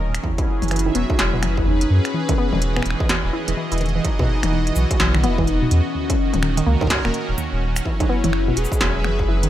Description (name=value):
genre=IDM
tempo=126 BPM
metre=4/4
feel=swing 62% on 16ths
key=unclear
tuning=A4 = 439 Hz
part: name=warm analog pad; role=sustained chords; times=0.0-9.5 s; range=D#3 to E5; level=-27 LUFS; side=right 2 dB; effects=chorus, tremolo
part: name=warm sub bass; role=bass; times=0.0-9.5 s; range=D#1 to F#2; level=-20 LUFS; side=equal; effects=none
part: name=industrial drum kit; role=drums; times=0.1-9.5 s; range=finger snaps, hi-hat, shaker, snare drum, toms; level=-25 LUFS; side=left 1 dB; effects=studio reverb
part: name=warbly nostalgic lead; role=melody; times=0.2-9.5 s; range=C#4 to G#4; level=-27 LUFS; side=left 3 dB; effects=analog chorus, ping-pong delay
part: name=warbly dusty pluck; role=arpeggios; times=0.2-9.5 s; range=D#2 to E4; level=-26 LUFS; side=right 1 dB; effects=chorus, tape echo
part: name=electronic kick drum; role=drums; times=0.2-9.3 s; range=none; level=-22 LUFS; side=equal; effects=distortion, studio reverb
room=digital ambience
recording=none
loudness=-17 LUFS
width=side -12 dB against mid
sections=0.0-9.5 A section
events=none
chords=0.2 C#m11/E; 6.0 D#m7; 7.9 C#m11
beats=| 0.24 0.71 1.19 1.67 | 2.14 2.62 3.09 3.57 | 4.05 4.52 5.00 5.47 | 5.95 6.43 6.90 7.38 | 7.86 8.33 8.81 9.28